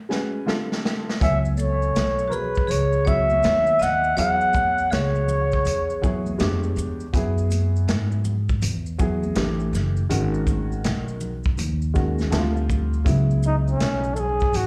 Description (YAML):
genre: hip hop, jazz-hop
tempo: 81 BPM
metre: 4/4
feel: swing 64% on 16ths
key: C# minor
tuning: A4 = 440 Hz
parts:
  - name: dark upright piano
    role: accompaniment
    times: 0.1-14.3 s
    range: C#3 to A5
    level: -30 LUFS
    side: equal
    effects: none
  - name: vintage drum kit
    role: drums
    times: 0.1-14.7 s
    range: hi-hat, kick drum, shaker, snare drum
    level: -28 LUFS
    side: equal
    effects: none
  - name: breathy flugelhorn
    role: melody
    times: 1.2-6.4, 13.5-14.7 s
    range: C#4 to F#5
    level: -24 LUFS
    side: equal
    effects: analog delay
  - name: vibraphone with hard mallets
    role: second line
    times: 1.2-6.4 s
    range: F#4 to D#5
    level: -33 LUFS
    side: equal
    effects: slapback echo
  - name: upright bass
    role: bass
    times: 1.2-14.7 s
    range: F#1 to G#2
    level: -26 LUFS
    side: equal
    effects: none
  - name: maracas and congas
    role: percussion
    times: 1.2-14.7 s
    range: none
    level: -39 LUFS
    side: equal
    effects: none
room: light reverb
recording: live gig heard through the venue's PA, club reverb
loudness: -22 LUFS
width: mono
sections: 0.0-13.1 A section; 13.1-14.7 B section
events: drum fill 0.0-1.2; upright piano fill 0.0-1.2, 12.0-13.1; flugelhorn solo 13.1-14.7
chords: 0.5 Dm7; 1.2 C#m9; 4.2 E69; 6.4 Fdim7; 7.1 F#sus2; 9.4 A5; 10.1 G#m7; 12.3 Dm7; 13.1 C#m7